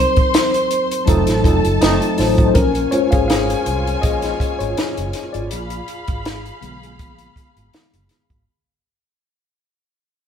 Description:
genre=lush 1970s-style soul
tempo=81 BPM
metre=4/4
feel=swing 54% on 16ths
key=Bb minor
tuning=A4 = 440 Hz
part: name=electric guitar through a small old amp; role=melody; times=0.0-1.4 s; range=C5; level=-19 LUFS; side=right 3 dB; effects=none
part: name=dark studio string section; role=second line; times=0.0-8.4 s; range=F4 to C6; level=-26 LUFS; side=left 3 dB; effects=none
part: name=tine electric piano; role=accompaniment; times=0.0-8.5 s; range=D3 to F5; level=-20 LUFS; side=left 3 dB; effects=overdrive, fast stereo tremolo
part: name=fingered electric bass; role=bass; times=0.0-8.4 s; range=F1 to C2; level=-23 LUFS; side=right 1 dB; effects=none
part: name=compact cocktail drum kit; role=drums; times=0.2-8.5 s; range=hi-hat, kick drum, snare drum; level=-19 LUFS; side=equal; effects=none
part: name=warm trombone section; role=stabs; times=1.1-2.5 s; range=A3 to Eb4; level=-23 LUFS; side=right 2 dB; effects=none
room=wet stone room reverb, RT60 1.0 s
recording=band playing live in one room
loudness=-15 LUFS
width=side -8 dB against mid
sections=0.0-2.6 A section; 2.6-8.5 B section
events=fade-out 2.6-8.5; tine electric piano solo 2.6-8.5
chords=0.0 Cm7b5; 1.1 F7b9; 2.6 Bbm7; 5.5 Bb7b9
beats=0.34 1.08 1.82 | 2.56 3.30 4.04 4.78 | 5.51 6.25 7.00 7.74

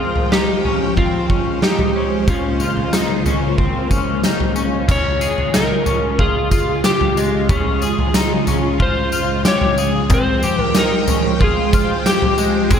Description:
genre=dream pop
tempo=92 BPM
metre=4/4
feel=straight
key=Db lydian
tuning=A4 = 440 Hz
part: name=electric slide guitar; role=melody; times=0.0-12.8 s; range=F4 to Db5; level=-22 LUFS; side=right 1 dB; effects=ping-pong delay
part: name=string machine, cellos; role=sustained chords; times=0.0-12.8 s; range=Db3 to G5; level=-21 LUFS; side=right 1 dB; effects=phaser, ensemble chorus
part: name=electric guitar at the edge of break-up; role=arpeggios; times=0.0-12.8 s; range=Ab3 to Ab4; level=-22 LUFS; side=left 4 dB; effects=analog chorus, ping-pong delay
part: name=oversized low-tuned drum kit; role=drums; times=0.2-12.8 s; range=crash cymbal, kick drum, snare drum, tambourine, toms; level=-18 LUFS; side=equal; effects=none
part: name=backwards swelling texture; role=texture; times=5.9-12.8 s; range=F4 to G5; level=-33 LUFS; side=left 1 dB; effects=none
room=moderate concert hall reverb, RT60 2.1 s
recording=none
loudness=-14 LUFS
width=side -8 dB against mid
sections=0.0-4.9 A section; 4.9-12.8 B section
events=none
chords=0.0 Fmadd9; 2.3 Db6; 4.9 Db; 10.1 Fmadd9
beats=0.32 0.97 1.62 | 2.28 2.93 3.58 4.23 | 4.88 5.54 6.19 6.84 | 7.49 8.14 8.80 9.45 | 10.10 10.75 11.41 12.06 | 12.71

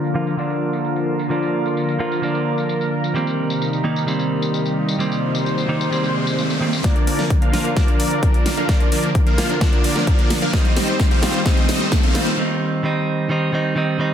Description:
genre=EDM, festival progressive house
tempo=130 BPM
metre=4/4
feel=straight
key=Bb major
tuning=A4 = 440 Hz
part: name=direct-recorded clean electric guitar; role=accompaniment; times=0.0-14.1 s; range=D3 to F4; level=-22 LUFS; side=right 2 dB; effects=vintage 12-bit sampler grit, sidechain pumping, dub echo
part: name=lush unison pad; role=sustained chords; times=0.0-12.4 s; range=C3 to C5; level=-24 LUFS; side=left 1 dB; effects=chorus, sidechain pumping
part: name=big-room dance drum kit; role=drums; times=0.0-12.4 s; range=hi-hat, snare drum, tambourine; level=-26 LUFS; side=left 1 dB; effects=low-pass filter on perc, low-pass filter on snare, low-pass filter on hats, low-pass filter on room
part: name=riser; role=sound effects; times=4.6-12.4 s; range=none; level=-29 LUFS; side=right 1 dB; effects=none
part: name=supersaw chords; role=riff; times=6.8-12.3 s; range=F3 to F5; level=-23 LUFS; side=equal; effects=sidechain pumping, low-pass filter, dub echo
part: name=electronic kick drum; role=drums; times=6.8-12.0 s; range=none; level=-17 LUFS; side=equal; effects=none
room=moderate digital room reverb, RT60 1.1 s, digital ambience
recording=dense, heavily limited modern master, low-pass filter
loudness=-17 LUFS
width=side -9 dB against mid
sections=0.0-6.8 A section; 6.8-14.1 B section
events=filter sweep 0.0-6.8; riser 4.6-6.8; build-up 6.8-14.1; drum fill 6.8-12.4; filter sweep on supersaw synth 6.8-14.1; break 12.4-14.1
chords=0.0 Bb; 3.1 Eb6; 6.8 Bb; 10.5 Cm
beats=0.38 0.84 | 1.30 1.77 2.23 2.69 | 3.15 3.61 4.07 4.54 | 5.00 5.46 5.92 6.38 | 6.84 7.30 7.77 8.23 | 8.69 9.15 9.61 10.07 | 10.54 11.00 11.46 11.92 | 12.38 12.84 13.30 13.77

